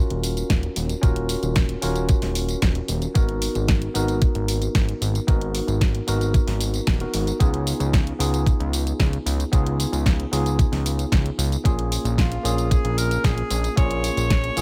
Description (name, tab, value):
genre	nu-disco, nu disco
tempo	113 BPM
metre	4/4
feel	straight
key	Eb minor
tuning	A4 = 440 Hz
part	tine electric piano	accompaniment	0.0-14.6 s	Bb3 to Bb4	-30 LUFS	equal	sidechain pumping, delay
part	fat analog bass	bass	0.0-14.6 s	Eb1 to Db2	-27 LUFS	equal	none
part	pop drum kit	drums	0.1-14.6 s	hi-hat, snare drum, tambourine	-31 LUFS	equal	none
part	electronic kick drum	drums	0.5-14.4 s	none	-22 LUFS	equal	none
part	clear tenor saxophone	melody	12.2-14.6 s	F4 to Db5	-30 LUFS	equal	none
room	little or no reverb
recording	none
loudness	-22 LUFS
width	mono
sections	0.0-14.6 A section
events	none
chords	0.0 Ebm9; 3.2 Abm7; 7.4 Db7; 11.7 Bbm7